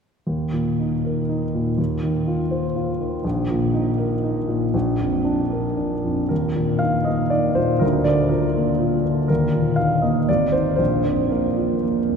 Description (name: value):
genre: classical, romantic character piece for solo piano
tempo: 107-125 BPM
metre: 3/4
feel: rubato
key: unclear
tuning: A4 = 441 Hz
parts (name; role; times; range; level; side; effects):
- warm grand piano; solo; 0.3-12.2 s; Ab1 to F5; -18 LUFS; equal; none
room: wet cathedral reverb, RT60 5.7 s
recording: heard from further back in the room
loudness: -19 LUFS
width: side -6 dB against mid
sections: 0.3-6.3 A section; 6.3-12.2 B section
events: none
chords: 0.3 Eb5; 1.8 F5/Eb; 3.2 Eb5/Bb; 4.7 Bb; 6.3 Eb5; 7.8 Bb/D; 9.3 Eb5; 10.3 Ab; 10.8 Bb5